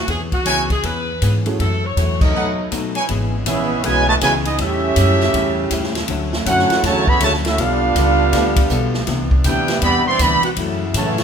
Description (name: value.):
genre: jazz, big band swing.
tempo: 160 BPM.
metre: 4/4.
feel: swing 64% on 8ths.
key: unclear.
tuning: A4 = 440 Hz.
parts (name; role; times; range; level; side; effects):
clear saxophone section; melody; 0.0-2.7 s; F#4 to D#5; -24 LUFS; left 1 dB; none.
upright bass; bass; 0.0-11.2 s; G#1 to A2; -21 LUFS; equal; none.
archtop guitar, miked and amplified; accompaniment; 0.1-11.2 s; F#2 to A4; -25 LUFS; left 5 dB; none.
swinging big-band drum kit; drums; 0.1-11.2 s; crash cymbal, hi-hat, kick drum, ride cymbal, snare drum; -22 LUFS; equal; none.
clear trumpet section; stabs; 0.5-3.1 s; D#4 to G#5; -22 LUFS; right 1 dB; none.
warm grand piano; accompaniment; 1.5-1.6 s; A3 to G#4; -28 LUFS; right 3 dB; none.
warm trombone section; second line; 2.2-11.2 s; B2 to G4; -22 LUFS; right 5 dB; none.
mellow saxophone section; sustained chords; 3.1-11.2 s; C3 to G4; -27 LUFS; left 2 dB; none.
warm trumpet section; melody; 3.5-11.2 s; B3 to C6; -18 LUFS; right 1 dB; none.
room: moderate recital hall reverb, RT60 1.7 s.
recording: minimal, uncompressed stereo recording.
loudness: -15 LUFS.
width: side -7 dB against mid.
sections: 0.0-3.1 A section; 3.1-11.2 B section.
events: band accent 2.2; break 2.3-3.1.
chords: 0.1 E6; 1.6 F#m7; 2.3 B7; 3.1 E6; 4.6 A7; 6.1 Dmaj9; 7.6 G9; 9.1 Cmaj9; 10.6 F#m7.